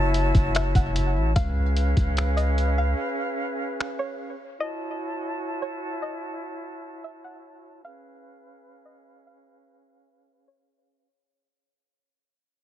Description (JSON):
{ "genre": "hip hop, atmospheric cloud-rap", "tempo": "148 BPM", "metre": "4/4", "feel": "half-time", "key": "unclear", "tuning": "A4 = 436 Hz", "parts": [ { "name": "breathy small flute group", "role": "sustained chords", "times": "0.0-11.1 s", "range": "C#4 to A5", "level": "-30 LUFS", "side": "equal", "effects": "sidechain pumping, low-pass filter" }, { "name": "long sustained 808-style bass", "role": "bass", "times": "0.0-2.9 s", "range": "F#1 to C#2", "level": "-23 LUFS", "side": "equal", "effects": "none" }, { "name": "trip hop sampler-style drum kit", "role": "drums", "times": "0.1-3.9 s", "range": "finger snaps, hi-hat, kick drum", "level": "-24 LUFS", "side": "equal", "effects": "none" }, { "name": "string-like resonator pluck", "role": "melody", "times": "0.6-11.1 s", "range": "C#5 to F#5", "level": "-35 LUFS", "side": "equal", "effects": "chorus, low-pass filter, digital delay" } ], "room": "digital ambience", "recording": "heavily compressed radio sound, multiband compression, nothing above 10.4 kHz", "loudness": "-23 LUFS", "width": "side -12 dB against mid", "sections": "0.0-11.1 A section", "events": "fade-out 0.0-11.1; filter sweep 0.0-11.1; break 3.0-4.6", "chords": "0.0 F#m7; 1.4 C#7; 4.6 F#m7; 7.8 C#7" }